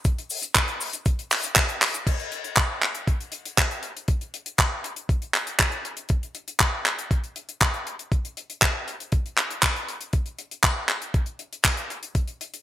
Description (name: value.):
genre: italo disco.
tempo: 119 BPM.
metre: 4/4.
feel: straight.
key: none.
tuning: none.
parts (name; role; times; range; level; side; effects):
damped 70s drum kit; drums; 0.0-12.6 s; cabasa, crash cymbal, handclaps, hi-hat; -23 LUFS; equal; gated reverb.
electronic kick drum; drums; 0.1-12.3 s; none; -23 LUFS; equal; none.
room: moderate plate reverb, RT60 1.2 s.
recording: bright 1980s-style digital production.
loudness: -22 LUFS.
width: side -13 dB against mid.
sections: 0.0-2.1 A section; 2.1-12.6 B section.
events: drum fill 1.8.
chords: none.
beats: | 0.05 0.55 1.06 1.56 | 2.07 2.57 3.08 3.58 | 4.08 4.59 5.09 5.60 | 6.10 6.60 7.11 7.61 | 8.12 8.62 9.12 9.63 | 10.13 10.64 11.14 11.65 | 12.15.